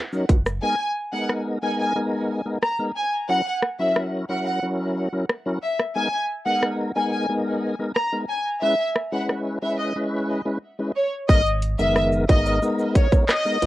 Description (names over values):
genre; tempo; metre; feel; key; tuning
dancehall; 90 BPM; 4/4; straight; G# minor; A4 = 440 Hz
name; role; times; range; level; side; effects
tonewheel organ; accompaniment; 0.1-13.6 s; D#3 to B4; -24 LUFS; left 1 dB; overdrive, chorus vibrato, slow rotary speaker, sidechain pumping, cassette tape
island pop drum kit; drums; 0.1-13.7 s; handclaps, hi-hat, kick drum, rim click, shaker; -19 LUFS; equal; cassette tape
sub bass with octave; bass; 0.3-0.6, 11.3-13.7 s; F#1 to G#1; -26 LUFS; equal; none
bongos; percussion; 0.3-0.4, 12.3-13.7 s; none; -27 LUFS; right 5 dB; none
rich studio violin section; melody; 0.6-13.7 s; C#5 to A#5; -24 LUFS; equal; cassette tape, tape echo
room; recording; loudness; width
little or no reverb; home recording on cassette; -20 LUFS; side -16 dB against mid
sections
0.6-11.3 A section; 11.3-13.7 B section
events
break 10.0-11.3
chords
0.0 D#m7; 0.6 G#madd9; 3.3 F#7; 6.0 G#madd9; 8.6 C#m7; 11.3 G#madd9